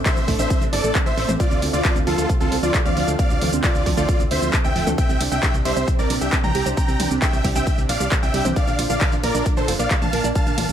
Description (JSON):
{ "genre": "uplifting trance", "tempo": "134 BPM", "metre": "4/4", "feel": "straight", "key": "D minor", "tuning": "A4 = 438 Hz", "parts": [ { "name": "analog string pad", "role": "sustained chords", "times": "0.0-10.7 s", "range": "C3 to G4", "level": "-28 LUFS", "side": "right 1 dB", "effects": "ensemble chorus, sidechain pumping" }, { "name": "solid FM bass", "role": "bass", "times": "0.0-10.7 s", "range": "D1 to D2", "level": "-25 LUFS", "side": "equal", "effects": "sidechain pumping" }, { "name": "big supersaw lead", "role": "melody", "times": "0.1-10.7 s", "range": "F4 to Bb5", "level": "-25 LUFS", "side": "equal", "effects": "cassette tape, sidechain pumping, dub echo" }, { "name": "clear baby grand piano", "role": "second line", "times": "0.1-10.7 s", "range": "A4 to Bb5", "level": "-32 LUFS", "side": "equal", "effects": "sidechain pumping, dub echo" }, { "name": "analog pluck", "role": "arpeggios", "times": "0.1-10.7 s", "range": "C3 to F4", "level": "-27 LUFS", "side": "right 4 dB", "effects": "chorus, sidechain pumping, dub echo" }, { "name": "electronic kick drum", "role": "drums", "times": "0.1-10.4 s", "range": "none", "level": "-20 LUFS", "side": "equal", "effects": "none" }, { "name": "punchy analog drum machine", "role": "drums", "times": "0.1-10.7 s", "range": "handclaps, hi-hat, ride cymbal, shaker, toms", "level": "-26 LUFS", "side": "equal", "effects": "none" } ], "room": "light reverb, digital ambience", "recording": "none", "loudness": "-17 LUFS", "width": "side -10 dB against mid", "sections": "0.0-10.7 A section", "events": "none", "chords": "0.0 Am; 1.4 Dm7; 5.0 Csus2; 8.6 Bb", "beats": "0.06 0.50 0.95 | 1.40 1.85 2.29 2.74 | 3.19 3.64 4.09 4.53 | 4.98 5.43 5.88 6.33 | 6.77 7.22 7.67 8.12 | 8.56 9.01 9.46 9.91 | 10.36" }